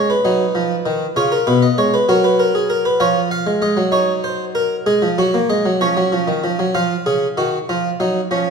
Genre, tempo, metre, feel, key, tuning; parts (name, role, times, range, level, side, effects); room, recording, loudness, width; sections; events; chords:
classical, baroque-style 3-part fugue for harpsichord; 64 BPM (dotted quarters); 6/8; straight; A4 = 440 Hz
harpsichord; solo; 0.0-8.5 s; B2 to E#5; -15 LUFS; equal
wet recital hall reverb, RT60 1.6 s; minimal, uncompressed stereo recording; -15 LUFS; side -5 dB against mid
0.0-6.7 A section; 6.7-8.5 B section
0.2 B; 1.2 C#7; 2.1 F#; 3.0 C#/E#; 3.9 D#m7/F#; 4.9 G#5; 5.8 C#/E#; 6.7 C#; 7.7 F#5/E#